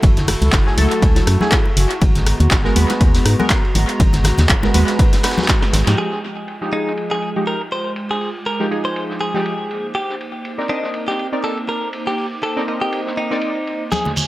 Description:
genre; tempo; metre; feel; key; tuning
deep house; 121 BPM; 4/4; swing 56% on 16ths; unclear; A4 = 441 Hz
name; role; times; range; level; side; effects
hollow soft pad; sustained chords; 0.0-14.3 s; Gb3 to D6; -27 LUFS; right 1 dB; chorus, sidechain pumping
organ-like FM bass; bass; 0.0-6.0 s; Gb1 to Ab2; -16 LUFS; equal; sidechain pumping
electronic kick drum; drums; 0.0-5.6 s; none; -16 LUFS; equal; none
punchy analog drum machine; drums; 0.0-6.0 s; handclaps, hi-hat, rim click, snare drum; -22 LUFS; equal; analog delay
warm soul drum kit; drums; 0.0-14.3 s; hi-hat, ride cymbal, snare drum; -30 LUFS; equal; sidechain pumping on cymbals, high-pass filter on cymbals, low-pass filter on cymbals, sidechain pumping on hats, high-pass filter on hats, low-pass filter on hats, high-pass filter on snare, low-pass filter on snare, high-pass filter on room, low-pass filter on room, analog delay
congas and bongos; percussion; 0.0-5.6, 13.9-14.3 s; none; -25 LUFS; left 2 dB; analog delay
warm analog keys; stabs; 0.7-13.5 s; F3 to Eb5; -22 LUFS; equal; chorus, sidechain pumping, low-pass filter, analog delay
direct-recorded clean electric guitar; melody; 6.0-14.1 s; D4 to C5; -23 LUFS; equal; analog delay
shekere; percussion; 13.9-14.3 s; none; -22 LUFS; right 3 dB; none
room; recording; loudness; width
moderate spring reverb, RT60 1.4 s; echo-heavy mix; -15 LUFS; side -17 dB against mid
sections
0.0-6.0 A section; 6.0-14.3 B section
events
drum fill 5.5-6.0; band accent 5.9; filter sweep on synth keys 6.0-14.3; filter sweep on analog synth pad 6.0-14.3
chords
0.0 Gbm9; 2.0 Abm9; 6.0 Fm9; 9.7 Cm9

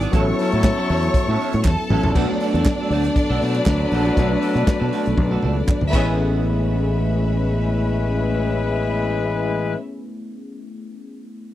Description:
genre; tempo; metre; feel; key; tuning
disco; 119 BPM; 4/4; straight; A major; A4 = 439 Hz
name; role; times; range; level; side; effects
clear studio string section; second line; 0.0-9.7 s; C#4 to D6; -26 LUFS; equal; slapback echo
clean electric guitar; accompaniment; 0.0-9.8 s; E3 to A4; -28 LUFS; right 6 dB; lush chorus
overdriven tine electric piano; accompaniment; 0.0-11.5 s; F#3 to A4; -26 LUFS; left 2 dB; analog chorus
fingered electric bass; bass; 0.0-9.7 s; A1 to B2; -21 LUFS; equal; none
warm soul drum kit; drums; 0.0-6.1 s; crash cymbal, hi-hat, kick drum, snare drum, toms; -20 LUFS; equal; none
warm horn section; stabs; 0.1-9.7 s; F#3 to B4; -25 LUFS; left 6 dB; none
group handclap; percussion; 0.6-6.4 s; none; -33 LUFS; right 4 dB; none
room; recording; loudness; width
little or no reverb; none; -17 LUFS; side -13 dB against mid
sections
0.0-2.2 A section; 2.2-6.2 B section; 6.2-10.2 C section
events
drum fill 1.6-2.2, 5.2-6.2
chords
0.1 A6; 2.2 Bm7; 5.9 Amaj9

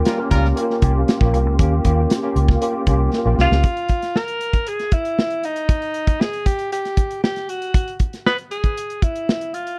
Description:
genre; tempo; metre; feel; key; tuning
polished 1980s jazz-funk pop; 117 BPM; 4/4; straight; unclear; A4 = 440 Hz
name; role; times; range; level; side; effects
tine electric piano; accompaniment; 0.0-3.7 s; Bb3 to Bb4; -23 LUFS; equal; overdrive, ensemble chorus
warm horn section; second line; 0.1-0.5 s; G3 to Bb4; -29 LUFS; equal; none
modern studio drum kit; drums; 0.1-9.8 s; hi-hat, kick drum, snare drum; -21 LUFS; equal; none
vintage muted fingered electric bass; bass; 0.3-3.6 s; Bb1 to Eb2; -20 LUFS; equal; none
breathy alto saxophone; melody; 3.4-9.8 s; Eb4 to B4; -25 LUFS; equal; none
room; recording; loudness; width
small room ambience; dry, close 1970s-style studio recording; -19 LUFS; mono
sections
0.0-3.6 A section; 3.6-9.8 B section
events
drum fill 3.1-3.6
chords
0.0 Eb9 (rootless); 3.6 N.C.

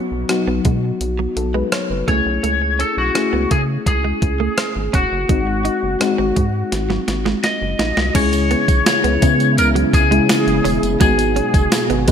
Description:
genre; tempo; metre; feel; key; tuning
1980s-style pop; 84 BPM; 4/4; straight; unclear; A4 = 440 Hz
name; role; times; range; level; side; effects
mellow FM electric piano; accompaniment; 0.0-12.1 s; F#3 to C#5; -21 LUFS; left 4 dB; chorus
direct-recorded clean electric guitar; riff; 0.0-12.1 s; F#3 to D#4; -26 LUFS; right 6 dB; wide subtle chorus
rubbery square bass; bass; 0.1-12.1 s; E1 to C#3; -22 LUFS; equal; none
clean 12-bit digital drum machine; drums; 0.3-12.1 s; crash cymbal, hi-hat, kick drum, rim click, snare drum, tambourine; -19 LUFS; equal; gated reverb
lightly driven lead guitar; melody; 2.1-12.1 s; F#4 to D#5; -20 LUFS; left 2 dB; none
string machine, cellos; sustained chords; 8.1-12.1 s; B2 to F#4; -22 LUFS; right 1 dB; ensemble chorus
tambourine; percussion; 8.2-12.1 s; none; -33 LUFS; right 13 dB; none
room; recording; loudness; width
light reverb, digital ambience; faint mains hum; -15 LUFS; side -8 dB against mid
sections
0.0-8.2 A section; 8.2-12.1 B section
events
drum fill 6.7-8.2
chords
0.0 B; 2.1 Amaj7; 5.3 G#7; 8.2 C#m; 11.0 G#m7

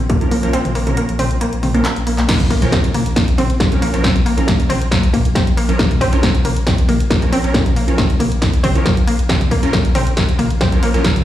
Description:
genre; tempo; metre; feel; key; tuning
driving peak-time techno; 137 BPM; 4/4; straight; Bb minor; A4 = 440 Hz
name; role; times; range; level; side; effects
saturated sub bass; bass; 0.0-11.2 s; Bb1; -20 LUFS; equal; overdrive, sidechain pumping, low-pass filter
deep dark ambient pad; drone; 0.0-2.3 s; Bb2; -26 LUFS; equal; chorus, built-in reverb, sidechain pumping
analog pluck; riff; 0.1-11.1 s; Bb3 to C4; -21 LUFS; left 1 dB; chorus, tube saturation, sidechain pumping, dub echo
electronic kick drum; drums; 0.1-11.1 s; none; -16 LUFS; equal; none
punchy analog drum machine; drums; 0.1-11.2 s; crash cymbal, handclaps, hi-hat, ride cymbal, snare drum, toms; -20 LUFS; equal; none
rave stab; stabs; 0.2-11.0 s; F3 to Bb4; -23 LUFS; right 2 dB; chorus, built-in reverb, sidechain pumping, tape echo
impact; sound effects; 2.3-4.0 s; none; -26 LUFS; left 1 dB; none
room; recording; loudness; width
moderate stone room reverb, RT60 1.0 s, digital ambience; played on a big sound system in a bare room, stone room reverb, small room reverb; -13 LUFS; side -12 dB against mid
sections
0.0-2.3 A section; 2.3-11.2 B section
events
kick drops out 0.5-2.3; drum fill 1.8-2.3; drop 2.3-11.2; impact 2.3-4.0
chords
0.0 Bbm

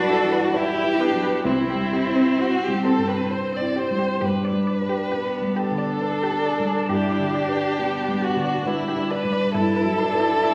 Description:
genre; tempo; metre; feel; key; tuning
neoclassical piano and strings; 67 BPM; 3/4; rubato; G major; A4 = 442 Hz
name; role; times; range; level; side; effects
dark violin; melody; 0.0-10.5 s; E4 to D5; -27 LUFS; equal; none
rich cello; second line; 0.0-10.5 s; G3 to E4; -32 LUFS; equal; none
felt-muted upright piano; accompaniment; 0.0-10.5 s; C2 to C5; -28 LUFS; equal; none
rich viola; accompaniment; 0.0-10.5 s; C4 to F#4; -31 LUFS; equal; none
resonant blip pluck; arpeggios; 0.1-10.5 s; C4 to G5; -30 LUFS; equal; chorus
room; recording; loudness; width
wet recital hall reverb, RT60 1.6 s; recorded in a church or concert hall; -22 LUFS; mono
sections
0.0-10.5 A section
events
none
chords
0.0 Emadd9/G; 1.5 C; 4.2 G; 9.5 Emadd9/G

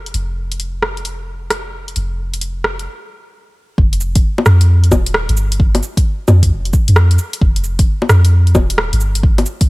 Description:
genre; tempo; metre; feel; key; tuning
future garage; 132 BPM; 4/4; swing 66% on 16ths; unclear; A4 = 440 Hz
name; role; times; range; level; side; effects
soft 808-style bass; bass; 0.0-9.5 s; Eb1 to F2; -14 LUFS; equal; sidechain pumping
deep house drum kit; drums; 0.1-9.7 s; bongos, cabasa, hi-hat, rim click; -18 LUFS; left 1 dB; none
electronic kick drum; drums; 3.8-9.7 s; none; -13 LUFS; equal; none
room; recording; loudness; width
digital ambience; none; -12 LUFS; side -22 dB against mid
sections
0.0-3.8 A section; 3.8-9.7 B section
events
filter sweep on drum 0.0-3.8; stop 2.9-3.8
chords
none

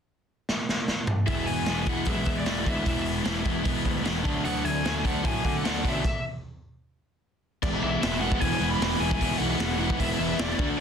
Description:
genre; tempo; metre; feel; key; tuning
punk rock; 151 BPM; 4/4; straight; E mixolydian; A4 = 440 Hz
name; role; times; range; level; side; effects
raw garage drum kit; drums; 0.5-10.7 s; crash cymbal, hi-hat, kick drum, snare drum, toms; -28 LUFS; equal; none
biting lead guitar; melody; 1.3-10.8 s; D5 to B5; -32 LUFS; left 2 dB; overdrive
crunchy overdriven guitar; riff; 1.3-10.8 s; D3 to F#4; -27 LUFS; equal; none
fuzz picked electric bass; bass; 1.3-10.8 s; E1 to D3; -32 LUFS; equal; overdrive
room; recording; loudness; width
little or no reverb; dense, heavily limited modern master; -24 LUFS; side -7 dB against mid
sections
0.0-1.3 A section; 1.3-7.6 B section; 7.6-10.8 C section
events
drum fill 0.5-1.3; stop 6.0-7.6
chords
0.0 N.C.; 1.3 E; 4.2 D; 6.0 N.C.; 7.6 E

